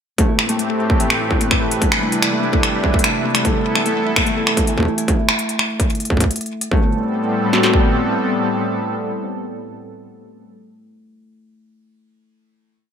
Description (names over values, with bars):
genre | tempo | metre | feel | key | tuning
IDM | 147 BPM | 4/4 | straight | A minor | A4 = 440 Hz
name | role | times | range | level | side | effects
warm analog pad | sustained chords | 0.2-10.5 s | A2 to B4 | -21 LUFS | equal | chorus, tremolo
Celtic harp | arpeggios | 0.2-10.0 s | E3 to A4 | -22 LUFS | left 1 dB | ping-pong delay
industrial drum kit | drums | 0.2-7.8 s | kick drum, snare drum | -17 LUFS | equal | distortion, overdrive, gated reverb
industrial drum kit | drums | 0.2-6.7 s | finger snaps, hi-hat | -20 LUFS | equal | overdrive, gated reverb, ping-pong delay
room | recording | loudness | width
moderate plate reverb, RT60 1.7 s | bright 1980s-style digital production | -15 LUFS | side -8 dB against mid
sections
0.2-6.7 groove; 6.7-10.0 final chord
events
none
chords
0.2 Am9; 1.8 Cmaj9; 3.5 Am9/C; 5.1 N.C.; 6.7 Am9